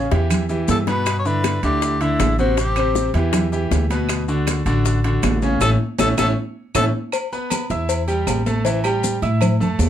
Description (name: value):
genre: latin, salsa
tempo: 158 BPM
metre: 4/4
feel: straight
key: unclear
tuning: A4 = 442 Hz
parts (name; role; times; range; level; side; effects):
- bright concert grand piano; accompaniment; 0.0-9.9 s; B2 to E6; -22 LUFS; equal; none
- upright bass; bass; 0.0-9.9 s; A1 to A2; -21 LUFS; equal; none
- bongos and cowbell; percussion; 0.1-9.9 s; none; -27 LUFS; left 8 dB; none
- maracas; percussion; 0.1-9.9 s; none; -31 LUFS; left 5 dB; none
- timbales and agogo bells; percussion; 0.1-9.9 s; none; -29 LUFS; right 5 dB; none
- claves; percussion; 0.3-9.6 s; none; -32 LUFS; right 7 dB; none
- congas; percussion; 0.3-9.9 s; none; -26 LUFS; right 1 dB; none
- breathy tenor saxophone; melody; 0.7-3.1, 5.6-6.8 s; E4 to C#5; -22 LUFS; left 1 dB; none
room: moderate studio reverb, RT60 0.5 s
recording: none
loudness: -17 LUFS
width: side -10 dB against mid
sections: 0.0-7.1 A section; 7.1-9.9 B section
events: drum fill 0.1-1.1, 6.4-7.1; band accent 5.6-7.1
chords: 0.0 A7(no3) (rootless); 1.1 Am11; 4.1 D6; 5.6 A; 7.1 Em; 8.7 A5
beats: 0.31 0.69 | 1.07 1.45 1.82 2.20 | 2.58 2.96 3.34 3.71 | 4.09 4.47 4.85 5.23 | 5.61 5.99 6.37 6.75 | 7.13 7.51 7.89 8.27 | 8.65 9.03 9.41 9.79